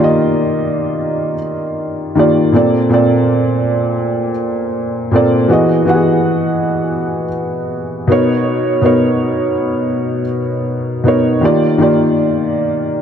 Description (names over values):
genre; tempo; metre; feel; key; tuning
R&B; 81 BPM; 4/4; swing 58% on 16ths; unclear; A4 = 440 Hz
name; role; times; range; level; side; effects
felt-muted upright piano; solo; 0.0-13.0 s; Bb2 to F#5; -12 LUFS; equal; none
room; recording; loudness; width
moderate lush hall reverb, RT60 2.5 s; dark, warm production; -12 LUFS; side -8 dB against mid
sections
0.0-13.0 A section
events
none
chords
0.0 Ebmaj9; 2.5 Bbmaj9; 5.5 Emaj9; 8.1 Bmaj9; 11.4 Ebmaj9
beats
0.32 1.06 1.80 | 2.54 3.28 4.02 4.76 | 5.50 6.24 6.98 7.72 | 8.46 9.20 9.94 10.69 | 11.43 12.17 12.91